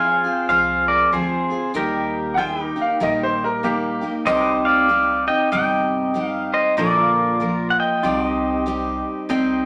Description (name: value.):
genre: honky-tonk and classic country.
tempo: 95 BPM.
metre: 4/4.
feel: swing 61% on 8ths.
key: C minor.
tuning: A4 = 440 Hz.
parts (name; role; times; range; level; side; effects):
pedal steel guitar; melody; 0.0-8.6 s; G4 to Ab5; -21 LUFS; equal; none.
picked steel-string acoustic guitar; accompaniment; 0.0-9.7 s; Bb2 to Bb4; -26 LUFS; equal; none.
pedal steel guitar; sustained chords; 0.0-9.7 s; Eb4 to G5; -30 LUFS; equal; none.
upright bass; bass; 0.0-9.7 s; F1 to Eb2; -40 LUFS; equal; none.
bright upright piano; second line; 2.3-4.1 s; Bb3 to G5; -23 LUFS; equal; none.
room: wet small room reverb, RT60 0.6 s.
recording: none.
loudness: -20 LUFS.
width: mono.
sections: 0.0-9.3 A section.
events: none.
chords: 0.0 Fm; 1.8 Eb; 4.3 Cm; 6.8 Bb; 8.0 Cm.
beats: 0.49 1.12 | 1.75 2.38 3.01 3.64 | 4.27 4.90 5.53 6.15 | 6.78 7.41 8.04 8.67 | 9.30.